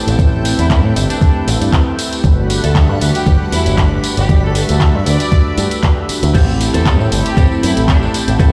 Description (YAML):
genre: nu-disco, nu disco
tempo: 117 BPM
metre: 4/4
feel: swing 54% on 16ths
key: A dorian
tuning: A4 = 440 Hz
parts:
  - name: warm analog pad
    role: accompaniment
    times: 0.0-8.5 s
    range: A3 to B5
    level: -22 LUFS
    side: equal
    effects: chorus
  - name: lush unison pad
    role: sustained chords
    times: 0.0-8.5 s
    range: G3 to B5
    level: -29 LUFS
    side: equal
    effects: chorus, sidechain pumping
  - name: picked electric bass with an envelope filter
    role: bass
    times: 0.1-8.5 s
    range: G1 to A2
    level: -18 LUFS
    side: equal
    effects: tube saturation
  - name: house drum kit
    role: drums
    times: 0.1-8.5 s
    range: crash cymbal, handclaps, hi-hat, tambourine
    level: -24 LUFS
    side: equal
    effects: none
  - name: electronic kick drum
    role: drums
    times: 0.2-8.5 s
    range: none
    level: -14 LUFS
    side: equal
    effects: none
  - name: rich studio violin section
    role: melody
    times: 0.6-8.0 s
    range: D4 to D5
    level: -27 LUFS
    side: equal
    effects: digital delay
  - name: clean electric guitar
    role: riff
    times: 6.3-8.5 s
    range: E4 to C5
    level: -28 LUFS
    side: equal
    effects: subtle chorus
room: digital ambience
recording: played on a big sound system in a bare room, stone room reverb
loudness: -13 LUFS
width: mono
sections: 0.0-6.3 A section; 6.3-8.5 B section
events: drop 6.3-8.5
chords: 0.0 Am7; 2.2 Gmaj7; 6.3 Am7